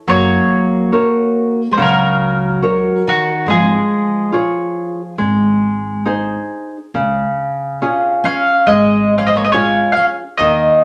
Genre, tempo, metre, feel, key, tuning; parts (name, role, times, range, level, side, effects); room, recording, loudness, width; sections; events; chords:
fado-style ballad; 70 BPM; 4/4; rubato; Db major; A4 = 440 Hz
mandolin; melody; 0.1-10.8 s; Gb4 to F5; -17 LUFS; equal
fingerpicked twelve-string acoustic guitar; second line; 0.1-10.8 s; Eb3 to Db4; -21 LUFS; equal
nylon-string guitar; accompaniment; 0.1-10.8 s; Db3 to Db5; -18 LUFS; equal
upright bass; bass; 0.1-10.7 s; Gb1 to Eb2; -26 LUFS; equal
wet studio reverb, RT60 0.6 s; -15 LUFS; mono
0.0-10.8 A section
0.1 Gb; 3.5 Db/Ab; 5.2 Ab; 6.9 Db